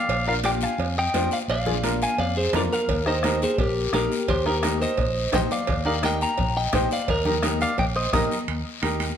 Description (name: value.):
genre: latin, cumbia.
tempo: 172 BPM.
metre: 4/4.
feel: straight.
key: Eb major.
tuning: A4 = 440 Hz.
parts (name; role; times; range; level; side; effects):
clean electric guitar; melody; 0.0-8.4 s; G4 to Bb5; -25 LUFS; equal; spring reverb.
fingered electric bass; bass; 0.1-9.1 s; Bb1 to F2; -28 LUFS; equal; none.
congas; percussion; 0.1-9.2 s; none; -32 LUFS; left 3 dB; none.
cowbell and timbales; percussion; 0.1-9.2 s; none; -32 LUFS; right 7 dB; none.
guiro; percussion; 0.1-9.2 s; none; -34 LUFS; left 7 dB; none.
bright upright piano; accompaniment; 0.3-9.1 s; D4 to C5; -28 LUFS; equal; none.
bombo; percussion; 2.9-8.3 s; none; -29 LUFS; left 1 dB; none.
room: moderate large studio reverb, RT60 1.1 s.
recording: none.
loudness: -21 LUFS.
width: side -8 dB against mid.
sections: 0.0-8.5 A section.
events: none.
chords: 0.1 Bb7; 2.9 Eb.